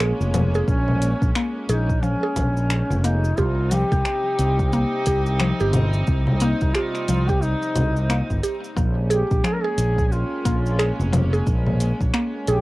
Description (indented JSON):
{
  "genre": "organic downtempo",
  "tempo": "89 BPM",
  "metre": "4/4",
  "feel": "swing 60% on 16ths",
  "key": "Bb dorian",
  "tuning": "A4 = 445 Hz",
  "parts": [
    { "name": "mellow duduk", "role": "melody", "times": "0.0-12.6 s", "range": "Db4 to Bb4", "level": "-27 LUFS", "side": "equal", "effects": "cassette tape, tape echo" },
    { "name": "warm studio string section", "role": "sustained chords", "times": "0.0-12.6 s", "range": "C3 to Eb4", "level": "-30 LUFS", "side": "equal", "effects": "sidechain pumping, cassette tape" },
    { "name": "mallet-like synth pluck", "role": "arpeggios", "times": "0.0-12.6 s", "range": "F3 to Ab4", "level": "-26 LUFS", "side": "equal", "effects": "chorus, cassette tape, tape echo" },
    { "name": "fretless electric bass", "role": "bass", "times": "0.0-12.6 s", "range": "F1 to C2", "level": "-21 LUFS", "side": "equal", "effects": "none" },
    { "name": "deep house drum kit", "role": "drums", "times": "0.0-12.6 s", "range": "congas, finger snaps, hi-hat, shaker", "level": "-27 LUFS", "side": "left 1 dB", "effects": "overdrive, cassette tape" },
    { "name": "electronic kick drum", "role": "drums", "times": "0.7-12.1 s", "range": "none", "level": "-24 LUFS", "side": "equal", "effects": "overdrive, cassette tape" },
    { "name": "udu", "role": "percussion", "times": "10.0-10.6 s", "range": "none", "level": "barely audible", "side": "none", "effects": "none" }
  ],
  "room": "moderate booth ambience, RT60 0.2 s",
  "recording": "home recording on cassette",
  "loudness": "-19 LUFS",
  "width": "side -19 dB against mid",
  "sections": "0.0-12.6 A section",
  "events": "none",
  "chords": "0.0 Bbm7; 3.4 Cm; 8.8 Bbm7"
}